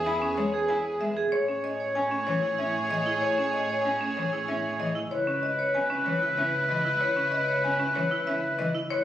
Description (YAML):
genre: classical, minimalist pattern music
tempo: 190 BPM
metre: 6/4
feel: straight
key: unclear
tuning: A4 = 440 Hz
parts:
  - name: clear oboe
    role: second line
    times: 0.0-9.0 s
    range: G#4 to C#5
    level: -28 LUFS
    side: equal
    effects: none
  - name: clear symphonic string section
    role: sustained chords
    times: 0.0-9.0 s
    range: E4 to C#5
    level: -36 LUFS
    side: equal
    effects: none
  - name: vibraphone with hard mallets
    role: arpeggios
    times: 0.0-8.9 s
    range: C#4 to E5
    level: -32 LUFS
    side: right 2 dB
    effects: none
  - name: warm symphonic double bass section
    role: bass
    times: 0.0-9.0 s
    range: C#2 to A2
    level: -38 LUFS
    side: right 1 dB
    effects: none
  - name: marimba with medium hard mallets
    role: melody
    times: 0.1-9.0 s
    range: C#5 to B5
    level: -31 LUFS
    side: left 3 dB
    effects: none
  - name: rich cello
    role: accompaniment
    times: 0.1-8.7 s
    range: E3 to E4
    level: -34 LUFS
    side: left 2 dB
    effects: none
room: moderate recital hall reverb, RT60 1.3 s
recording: recorded on a phone in the room, club reverb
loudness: -24 LUFS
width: side -12 dB against mid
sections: 0.0-9.0 A section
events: none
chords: 0.0 E; 1.3 Amaj7; 5.1 C#m7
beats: 0.06 0.38 0.69 1.01 | 1.32 1.64 1.96 2.27 2.59 2.90 | 3.22 3.53 3.85 4.17 4.48 4.80 | 5.11 5.43 5.75 6.06 6.38 6.69 | 7.01 7.32 7.64 7.96 8.27 8.59 | 8.90